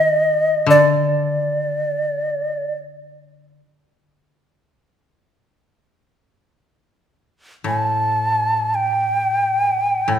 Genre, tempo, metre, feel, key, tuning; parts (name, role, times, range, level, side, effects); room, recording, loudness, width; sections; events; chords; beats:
japanese traditional, Japanese chamber music; free time; A4 = 439 Hz
breathy shakuhachi; melody; 0.0-10.2 s; D5 to A5; -17 LUFS; right 1 dB
koto; accompaniment; 0.0-10.2 s; A2 to Eb3; -24 LUFS; left 4 dB
moderate recital hall reverb, RT60 1.4 s; recorded in a church or concert hall; -16 LUFS; side -9 dB against mid
0.0-6.6 A section; 6.6-10.2 A section
free time